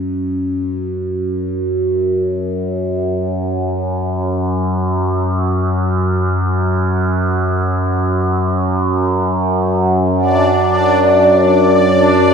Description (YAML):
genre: dark ambient drone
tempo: free time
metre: none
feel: none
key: unclear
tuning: A4 = 440 Hz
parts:
  - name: overtone-sweeping drone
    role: drone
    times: 0.0-12.3 s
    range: F#2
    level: -14 LUFS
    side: equal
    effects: chorus, built-in reverb
  - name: bubbling stepped-filter texture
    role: texture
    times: 10.2-12.3 s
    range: D4 to D5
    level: -13 LUFS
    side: equal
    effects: chorus, built-in reverb, shimmer reverb
room: wet cathedral reverb, RT60 6.3 s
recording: cassette tape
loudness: -13 LUFS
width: side -6 dB against mid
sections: 0.0-12.3 A section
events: fade-in on synth drone 0.0-12.3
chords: 0.0 N.C.; 10.2 D/F#